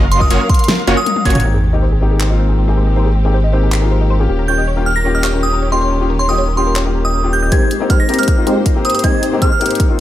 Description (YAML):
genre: future bass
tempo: 158 BPM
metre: 4/4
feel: half-time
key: Ab major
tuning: A4 = 442 Hz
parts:
  - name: warm symphonic string section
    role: sustained chords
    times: 0.0-10.0 s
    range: Ab2 to F5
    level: -24 LUFS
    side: left 1 dB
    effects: sidechain pumping
  - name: supersaw stab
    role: riff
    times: 0.0-1.4, 7.5-9.5 s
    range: Ab3 to Eb5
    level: -18 LUFS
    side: equal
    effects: sidechain pumping, low-pass filter
  - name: saturated sub bass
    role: bass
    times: 0.0-7.5 s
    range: Eb1 to Ab1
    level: -15 LUFS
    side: equal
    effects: tube saturation, sidechain pumping
  - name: glassy synth bell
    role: melody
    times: 0.1-1.4, 4.5-9.7 s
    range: C6 to Bb6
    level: -19 LUFS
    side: right 2 dB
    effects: chorus, sidechain pumping, tape echo
  - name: pop drum kit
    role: drums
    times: 0.1-9.9 s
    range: handclaps, hi-hat, snare drum, toms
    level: -20 LUFS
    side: left 1 dB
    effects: high-pass filter on hats, studio reverb, high-pass filter on snare, high-pass filter on toms
  - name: electronic kick drum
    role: drums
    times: 0.2-1.3, 7.5-9.9 s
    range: none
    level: -14 LUFS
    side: equal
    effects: studio reverb
  - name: felt-muted upright piano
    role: accompaniment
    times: 1.4-10.0 s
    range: Bb3 to G4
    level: -20 LUFS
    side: left 4 dB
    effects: sidechain pumping
  - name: wide unison pluck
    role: arpeggios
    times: 1.4-7.5 s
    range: G4 to Eb5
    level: -25 LUFS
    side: left 1 dB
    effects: phaser, sidechain pumping, tape echo
  - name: sub drop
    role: sound effects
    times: 1.4-3.0 s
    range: none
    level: -24 LUFS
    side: right 1 dB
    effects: none
room: light reverb, digital ambience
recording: none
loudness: -12 LUFS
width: side -13 dB against mid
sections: 0.0-1.4 A section; 1.4-7.5 B section; 7.5-10.0 C section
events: drop 0.0-1.4; drum fill 1.1-1.4; impact 1.4-3.0; filter sweep on synth arpeggio sound 1.4-7.5; build-up 7.5-10.0; filter sweep on supersaw synth 7.5-10.0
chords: 0.0 Gbmaj7; 1.4 Abmaj7; 4.3 Eb7; 7.5 Abmaj7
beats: 0.30 0.69 1.06 | 1.45 1.82 2.20 2.58 | 2.96 3.34 3.72 4.10 | 4.48 4.86 5.24 5.62 | 6.00 6.38 6.76 7.14 | 7.52 7.90 8.28 8.66 | 9.04 9.42 9.80